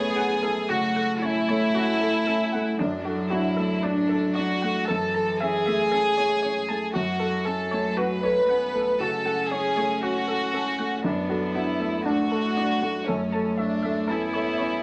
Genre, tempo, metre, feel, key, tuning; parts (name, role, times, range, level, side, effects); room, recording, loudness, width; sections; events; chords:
neoclassical piano and strings; 58 BPM; 4/4; rubato; F# minor; A4 = 440 Hz
warm chamber violin section; melody; 0.0-14.8 s; C#4 to B4; -28 LUFS; equal
warm cello; second line; 0.0-14.8 s; E3 to C#4; -32 LUFS; equal
felt-muted upright piano; accompaniment; 0.0-14.8 s; F#2 to C#5; -31 LUFS; equal
warbly dusty pluck; arpeggios; 0.0-14.7 s; D4 to A5; -34 LUFS; equal; chorus
wet studio reverb, RT60 0.6 s; -25 LUFS; mono
0.0-14.8 A section
0.0 F#m; 2.8 D/F#; 4.9 A/F#; 6.9 F#m; 11.0 D/F#; 13.1 A/F#